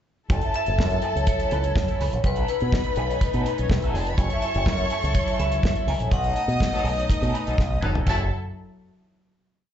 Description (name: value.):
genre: disco.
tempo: 124 BPM.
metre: 4/4.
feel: straight.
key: F# dorian.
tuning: A4 = 440 Hz.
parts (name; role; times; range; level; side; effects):
warm studio violin section; second line; 0.3-8.3 s; C#4 to D#6; -31 LUFS; left 2 dB; plate reverb, slapback echo.
electric guitar through a small old amp; accompaniment; 0.3-8.2 s; C#4 to B4; -34 LUFS; right 2 dB; wah, tremolo, plate reverb, slapback echo.
dark studio string section; sustained chords; 0.3-8.3 s; F#3 to A4; -34 LUFS; left 2 dB; plate reverb.
fingered electric bass with an envelope filter; bass; 0.3-8.3 s; E#1 to B2; -25 LUFS; equal; none.
damped 70s drum kit; drums; 0.3-8.2 s; crash cymbal, hi-hat, kick drum, snare drum, toms; -24 LUFS; equal; none.
vibraphone with hard mallets; melody; 0.6-6.8 s; B4 to G#5; -28 LUFS; left 1 dB; plate reverb, slapback echo.
warm horn section; stabs; 6.7-8.2 s; F#3 to A4; -33 LUFS; left 2 dB; plate reverb, slapback echo.
room: little or no reverb.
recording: live gig heard through the venue's PA, club reverb, nothing above 7.8 kHz.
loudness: -21 LUFS.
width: side -10 dB against mid.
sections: 0.3-8.1 groove; 8.1-9.7 final chord.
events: band accent 6.1-8.1; drum fill 7.6-8.1.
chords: 0.3 F#m7; 2.2 B9; 4.2 F#m7; 6.1 B9; 8.1 F#m7.